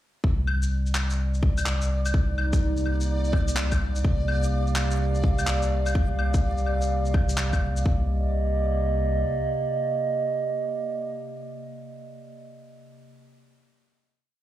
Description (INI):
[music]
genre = future garage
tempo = 126 BPM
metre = 4/4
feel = swing 64% on 16ths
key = C minor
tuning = A4 = 445 Hz
[part]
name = warm sub bass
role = bass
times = 0.2-9.2 s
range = C2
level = -25 LUFS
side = equal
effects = sidechain pumping
[part]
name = electronic kick drum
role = drums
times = 0.2-8.0 s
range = none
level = -23 LUFS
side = equal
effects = none
[part]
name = backwards swelling texture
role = texture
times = 1.1-7.9 s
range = D5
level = -38 LUFS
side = equal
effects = built-in reverb
[part]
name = electronic claves, shaker and handclaps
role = drums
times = 0.5-7.8 s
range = none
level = -32 LUFS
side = left 2 dB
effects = none
[part]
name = warbly tape-like pad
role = sustained chords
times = 2.3-12.4 s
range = C3 to F5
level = -28 LUFS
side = right 2 dB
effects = chorus, built-in reverb, sidechain pumping
[sound]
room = light reverb, digital ambience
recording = played on a big sound system in a bare room, large studio reverb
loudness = -22 LUFS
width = side -13 dB against mid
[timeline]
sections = 0.2-7.9 groove; 7.9-11.7 final chord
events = none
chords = 0.2 Cm9; 4.0 Bb/C; 7.9 Cm9